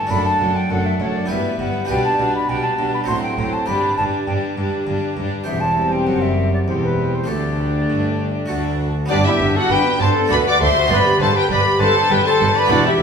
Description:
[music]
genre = classical, baroque-style concerto movement with solo episodes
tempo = 100 BPM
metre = 3/4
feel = straight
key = G major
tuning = A4 = 440 Hz
[part]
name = rich chamber violin section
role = melody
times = 0.0-13.0 s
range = F#4 to D6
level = -23 LUFS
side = left 1 dB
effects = none
[part]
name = silver concert flute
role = melody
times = 0.0-13.0 s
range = F#4 to C6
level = -22 LUFS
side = left 1 dB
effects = none
[part]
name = warm chamber violin section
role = second line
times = 0.0-12.9 s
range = B3 to D5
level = -23 LUFS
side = left 2 dB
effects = none
[part]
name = dark chamber viola section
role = accompaniment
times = 0.0-13.0 s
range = F#3 to B4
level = -24 LUFS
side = equal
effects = none
[part]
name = harpsichord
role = accompaniment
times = 0.0-13.0 s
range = D2 to D5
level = -25 LUFS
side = right 1 dB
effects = none
[part]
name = rich chamber double bass section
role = bass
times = 0.1-13.0 s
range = E1 to D2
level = -26 LUFS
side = right 3 dB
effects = none
[part]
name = warm chamber cello section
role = bass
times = 0.1-13.0 s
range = D2 to B2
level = -25 LUFS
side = right 2 dB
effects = none
[sound]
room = wet recital hall reverb, RT60 1.4 s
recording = recorded in a church or concert hall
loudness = -16 LUFS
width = side -6 dB against mid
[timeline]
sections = 0.0-9.1 A section; 9.1-13.0 B section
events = none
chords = 0.1 D/F#; 1.3 Em/G; 1.9 G/B; 3.1 F#dim/A; 3.7 G5; 5.5 C/E; 7.3 Dsus4; 8.5 D; 9.1 G; 10.3 D7; 10.9 G

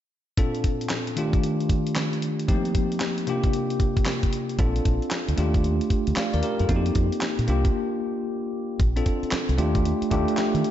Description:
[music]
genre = R&B, new jack swing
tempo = 114 BPM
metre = 4/4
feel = swing 64% on 16ths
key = Bb major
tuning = A4 = 439 Hz
[part]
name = bell-like tine electric piano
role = accompaniment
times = 0.4-10.7 s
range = Bb2 to F5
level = -25 LUFS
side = left 1 dB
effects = medium stereo tremolo
[part]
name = dusty soul sampler-style drum kit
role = drums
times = 0.4-10.7 s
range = handclaps, hi-hat, kick drum, snare drum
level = -26 LUFS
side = equal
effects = none
[part]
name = deep dub fingered electric bass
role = bass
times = 4.6-10.6 s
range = Bb1 to Eb3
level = -24 LUFS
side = equal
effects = none
[sound]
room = moderate lush hall reverb, RT60 1.8 s, digital ambience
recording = dreamy mix soaked in reverb, nothing above 7.8 kHz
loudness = -22 LUFS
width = side -11 dB against mid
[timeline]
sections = 0.4-8.8 A section; 8.8-10.7 B section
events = break 7.7-8.8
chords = 0.4 Bbmaj9; 1.2 Ebmaj9#11; 2.5 F7sus4; 3.3 C9sus4; 4.6 Bbmaj9; 5.4 Ebmaj9#11; 6.7 F7sus4; 7.5 C9sus4; 8.8 Bbmaj9; 9.6 Ebmaj9#11

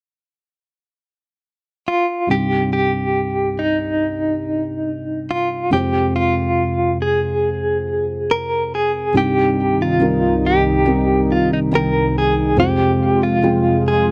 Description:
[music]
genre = pop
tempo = 70 BPM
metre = 4/4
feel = straight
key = unclear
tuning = A4 = 440 Hz
[part]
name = direct-recorded clean electric guitar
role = melody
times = 1.9-14.1 s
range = Eb4 to Bb4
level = -20 LUFS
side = equal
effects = tremolo
[part]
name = felt-muted upright piano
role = accompaniment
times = 2.3-14.1 s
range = C2 to G5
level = -23 LUFS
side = equal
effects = none
[part]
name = warm analog pad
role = sustained chords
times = 9.1-14.1 s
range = C2 to F4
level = -23 LUFS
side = equal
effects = chorus
[sound]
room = light reverb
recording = dry, close 1970s-style studio recording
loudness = -18 LUFS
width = mono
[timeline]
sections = 0.0-2.3 A section; 2.3-9.1 B section; 9.1-14.1 C section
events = none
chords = 0.0 N.C.; 2.3 Cm; 5.7 Fm; 9.1 Cm; 12.6 Fm

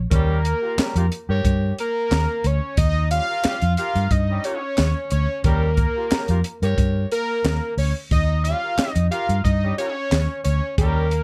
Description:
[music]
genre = funk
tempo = 90 BPM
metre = 4/4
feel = straight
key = unclear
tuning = A4 = 439 Hz
[part]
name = vintage muted fingered electric bass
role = bass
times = 0.0-11.2 s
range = D2 to G2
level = -23 LUFS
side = equal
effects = none
[part]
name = fat analog lead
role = melody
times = 0.1-11.2 s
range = Bb4 to F5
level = -27 LUFS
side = equal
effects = none
[part]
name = clear horn section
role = second line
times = 0.1-11.1 s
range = G3 to Db5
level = -32 LUFS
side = equal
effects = none
[part]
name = compact cocktail drum kit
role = drums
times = 0.1-11.2 s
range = handclaps, hi-hat, kick drum, snare drum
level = -25 LUFS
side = equal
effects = none
[sound]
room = light reverb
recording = dark, warm production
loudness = -21 LUFS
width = mono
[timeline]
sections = 0.0-11.2 A section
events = none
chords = 0.0 Eb9

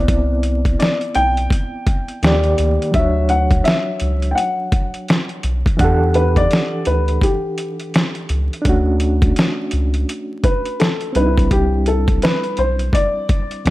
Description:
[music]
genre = lo-fi hip hop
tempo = 84 BPM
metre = 4/4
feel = swing 62% on 16ths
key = unclear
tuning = A4 = 440 Hz
[part]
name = overdriven reed electric piano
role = accompaniment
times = 0.0-13.7 s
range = D3 to F#5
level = -22 LUFS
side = right 1 dB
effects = fast tremolo
[part]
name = round analog bass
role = bass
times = 0.0-13.7 s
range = B1 to E2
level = -18 LUFS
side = equal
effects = none
[part]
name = dusty soul sampler-style drum kit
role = drums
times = 0.1-13.7 s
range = hi-hat, kick drum, snare drum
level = -17 LUFS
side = equal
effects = overdrive
[part]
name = dark upright piano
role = melody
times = 0.8-13.6 s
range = G4 to G5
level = -20 LUFS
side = left 1 dB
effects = none
[sound]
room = light reverb, digital ambience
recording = vinyl crackle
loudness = -15 LUFS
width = side -17 dB against mid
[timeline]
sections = 0.0-13.7 A section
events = none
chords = 0.0 Cmaj9; 2.2 Ebmaj7; 2.9 Dmaj7; 5.8 Em11; 8.7 Dmaj7; 11.2 Cmaj9

